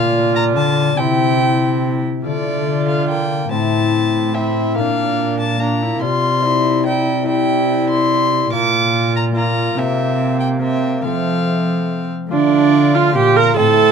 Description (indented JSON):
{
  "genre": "classical, renaissance-style consort dance",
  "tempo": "143 BPM",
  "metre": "3/4",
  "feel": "straight",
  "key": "unclear",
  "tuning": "A4 = 435 Hz",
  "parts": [
    { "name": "rich violin", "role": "melody", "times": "0.0-13.9 s", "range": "D5 to D6", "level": "-21 LUFS", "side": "left 2 dB", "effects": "none" },
    { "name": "warm viola", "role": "second line", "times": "0.0-13.9 s", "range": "C4 to Bb4", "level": "-19 LUFS", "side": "right 7 dB", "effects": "none" },
    { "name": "concert harp", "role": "accompaniment", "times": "0.0-13.9 s", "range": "A2 to F5", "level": "-21 LUFS", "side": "left 14 dB", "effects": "none" },
    { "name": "mellow bassoon", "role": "accompaniment", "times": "0.0-13.9 s", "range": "G3 to F4", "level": "-23 LUFS", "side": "left 2 dB", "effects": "none" },
    { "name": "dark cello", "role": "bass", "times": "0.0-13.9 s", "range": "A2 to F3", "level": "-21 LUFS", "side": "right 2 dB", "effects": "none" }
  ],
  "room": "light reverb",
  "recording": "close, detailed microphones",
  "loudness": "-14 LUFS",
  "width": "side -6 dB against mid",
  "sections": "0.0-2.3 A section; 2.3-12.3 B section; 12.3-13.9 B section",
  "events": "none",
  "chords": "0.0 Bb; 1.0 C; 2.3 Dm; 3.5 Am; 4.8 Bb; 6.0 Csus4; 6.4 C; 8.5 Bb; 9.8 C7; 11.0 F; 12.3 Dm"
}